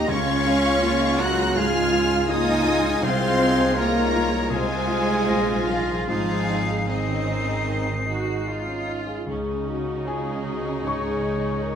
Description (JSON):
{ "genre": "cinematic, emotional film score for orchestra", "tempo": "73-83 BPM", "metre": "4/4", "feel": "rubato", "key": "Db major", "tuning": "A4 = 440 Hz", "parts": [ { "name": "warm studio violin section", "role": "melody", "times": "0.0-11.8 s", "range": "Ab4 to Gb6", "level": "-30 LUFS", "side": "left 2 dB", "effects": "none" }, { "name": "concert flute", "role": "second line", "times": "0.0-11.8 s", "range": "Db6 to C7", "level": "-33 LUFS", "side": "left 3 dB", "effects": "none" }, { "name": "mellow cor anglais", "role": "second line", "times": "0.0-11.8 s", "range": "Eb4 to F4", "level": "-33 LUFS", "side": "right 1 dB", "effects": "none" }, { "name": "rich studio violin section", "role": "second line", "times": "0.0-11.8 s", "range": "Eb4 to Bb5", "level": "-31 LUFS", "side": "left 4 dB", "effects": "none" }, { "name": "dark baby grand piano", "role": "accompaniment", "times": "0.0-11.8 s", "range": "C2 to Db6", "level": "-29 LUFS", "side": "left 1 dB", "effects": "none" }, { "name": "rich studio viola section", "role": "accompaniment", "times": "0.0-11.8 s", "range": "Gb3 to Ab4", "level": "-30 LUFS", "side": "right 3 dB", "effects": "none" }, { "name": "clear studio double bass section", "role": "bass", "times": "0.0-11.8 s", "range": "Ab1 to Db2", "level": "-30 LUFS", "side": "right 3 dB", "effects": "none" }, { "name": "rich studio cello section", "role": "bass", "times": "0.0-11.8 s", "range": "Db3 to Gb4", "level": "-28 LUFS", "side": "right 2 dB", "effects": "none" }, { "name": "clear clarinet", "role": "second line", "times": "0.1-11.8 s", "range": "Eb4 to Gb5", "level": "-30 LUFS", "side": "equal", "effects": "none" }, { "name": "mellow French horn section", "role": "sustained chords", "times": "0.1-11.8 s", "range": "Eb3 to Bb4", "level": "-28 LUFS", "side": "left 2 dB", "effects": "none" } ], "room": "wet recital hall reverb, RT60 1.6 s", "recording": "none", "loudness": "-20 LUFS", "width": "side -8 dB against mid", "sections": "0.0-9.3 A section; 9.3-11.8 B section", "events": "none", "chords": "0.1 Dbadd9; 3.0 Fm/C; 6.1 Ab; 9.3 Dbsus2" }